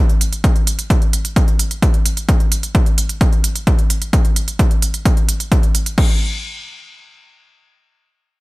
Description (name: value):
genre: EDM, festival progressive house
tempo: 130 BPM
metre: 4/4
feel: straight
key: none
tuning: none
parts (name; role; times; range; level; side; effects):
- big-room dance drum kit; drums; 0.1-6.1 s; crash cymbal, hi-hat; -23 LUFS; right 2 dB; overdrive
- electronic kick drum; drums; 0.4-6.1 s; none; -14 LUFS; equal; overdrive
room: little or no reverb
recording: none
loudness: -14 LUFS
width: side -21 dB against mid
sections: 0.0-6.0 A section; 6.0-8.4 B section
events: none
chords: none